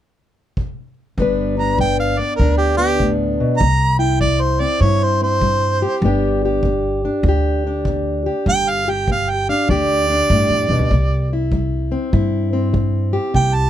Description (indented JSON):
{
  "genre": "acoustic country blues, solo or duo",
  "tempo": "99 BPM",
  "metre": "4/4",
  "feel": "swing 64% on 8ths",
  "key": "G mixolydian",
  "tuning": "A4 = 440 Hz",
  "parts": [
    { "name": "kick drum", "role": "drums", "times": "0.6-13.5 s", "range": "none", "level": "-24 LUFS", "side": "equal", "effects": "none" },
    { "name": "fingerpicked plugged-in steel-string acoustic guitar", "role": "accompaniment", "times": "1.2-13.7 s", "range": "G2 to B4", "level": "-20 LUFS", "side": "left 2 dB", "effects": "none" },
    { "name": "upright bass", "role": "bass", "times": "1.2-13.7 s", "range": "G1 to G2", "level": "-19 LUFS", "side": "equal", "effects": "none" },
    { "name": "warm harmonica", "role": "melody", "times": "1.6-13.7 s", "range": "G4 to Bb5", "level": "-18 LUFS", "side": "right 2 dB", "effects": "none" }
  ],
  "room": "little or no reverb",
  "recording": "none",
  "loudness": "-15 LUFS",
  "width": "side -11 dB against mid",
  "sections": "0.0-1.2 A section; 1.2-13.7 B section",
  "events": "none",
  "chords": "0.0 N.C.; 1.2 G; 3.6 C; 6.0 G; 10.9 C"
}